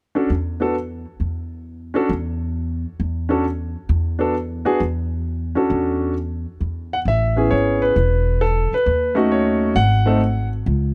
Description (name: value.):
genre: jazz piano trio.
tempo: 133 BPM.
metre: 4/4.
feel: swing 67% on 8ths.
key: A major.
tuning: A4 = 441 Hz.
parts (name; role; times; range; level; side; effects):
clear grand piano; melody; 0.1-10.5 s; A3 to F#5; -21 LUFS; equal; none.
upright bass; bass; 0.3-10.9 s; E1 to E2; -24 LUFS; equal; none.
room: small room ambience.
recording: dry, close 1970s-style studio recording.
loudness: -20 LUFS.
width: mono.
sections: 0.0-7.1 A section; 7.1-10.9 B section.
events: none.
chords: 0.0 Bm7 (rootless); 0.8 N.C.; 7.1 Amaj9; 8.9 D#m7b5; 9.8 G#7(no3).